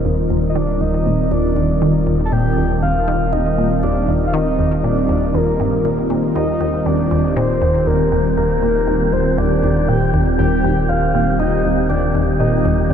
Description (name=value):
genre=ambient, sequencer-driven space music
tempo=119 BPM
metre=4/4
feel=straight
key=Eb major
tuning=A4 = 438 Hz
part: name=soft octave-layered synth lead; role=melody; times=0.0-12.9 s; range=Bb4 to A5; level=-21 LUFS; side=left 1 dB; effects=chorus, tape echo
part: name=sweeping resonant pad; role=sustained chords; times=0.0-12.9 s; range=Eb3 to Bb4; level=-19 LUFS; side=right 1 dB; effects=chorus
part: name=warm sub bass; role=bass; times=0.0-12.9 s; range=Eb1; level=-24 LUFS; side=equal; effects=none
part: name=wind-like tuned noise texture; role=texture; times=0.0-12.9 s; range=Eb4 to G4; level=-28 LUFS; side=left 1 dB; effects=built-in reverb
part: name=resonant blip pluck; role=riff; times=0.1-12.9 s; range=Eb2 to Eb3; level=-20 LUFS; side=equal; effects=phaser, tape echo
room=moderate huge ambient reverb, RT60 7.8 s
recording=dark, warm production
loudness=-14 LUFS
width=side -8 dB against mid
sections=0.0-12.9 A section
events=none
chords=0.0 Ebmaj7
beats=| 0.30 0.81 1.31 1.82 | 2.32 2.83 3.33 3.83 | 4.34 4.84 5.35 5.85 | 6.35 6.86 7.36 7.87 | 8.37 8.88 9.38 9.88 | 10.39 10.89 11.40 11.90 | 12.40 12.91